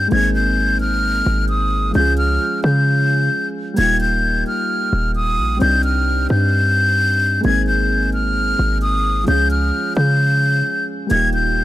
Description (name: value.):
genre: hip hop, trap.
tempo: 131 BPM.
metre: 4/4.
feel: half-time.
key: unclear.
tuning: A4 = 440 Hz.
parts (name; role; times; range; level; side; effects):
breathy concert flute; melody; 0.0-11.6 s; Eb6 to Ab6; -18 LUFS; left 1 dB; tape echo.
soft electric-piano-like synth keys; accompaniment; 0.0-11.6 s; F3 to Ab4; -23 LUFS; equal; chorus.
hard-hitting 808-style bass; bass; 0.0-11.6 s; Eb1 to Db3; -18 LUFS; equal; none.
room: small room ambience.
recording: dry, gritty hardware recording.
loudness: -15 LUFS.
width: side -14 dB against mid.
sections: 0.0-11.6 A section.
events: none.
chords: 0.1 Abadd9; 2.0 Db; 3.8 Ebadd9; 5.6 Cmadd9; 7.4 Abadd9; 9.3 Db; 11.1 Ebadd9.